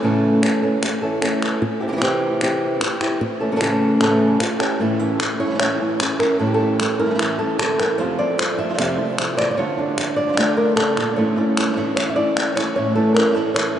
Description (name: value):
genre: flamenco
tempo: 151 BPM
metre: 4/4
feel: straight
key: A phrygian dominant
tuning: A4 = 441 Hz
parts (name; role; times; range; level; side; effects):
- flamenco guitar; melody; 0.0-13.8 s; A2 to E5; -18 LUFS; equal; none
- palmas hand claps; percussion; 0.4-13.8 s; none; -24 LUFS; left 1 dB; none
- flamenco guitar; stabs; 4.8-13.8 s; F2 to F4; -24 LUFS; right 2 dB; none
room: wet huge ambient reverb, RT60 8.7 s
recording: in a vast, echoing space, nothing above 10.5 kHz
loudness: -17 LUFS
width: side -10 dB against mid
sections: 0.0-4.8 A section; 4.8-13.8 B section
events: none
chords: 0.0 A; 1.6 C; 3.2 A; 8.0 F; 9.6 Dm; 11.2 A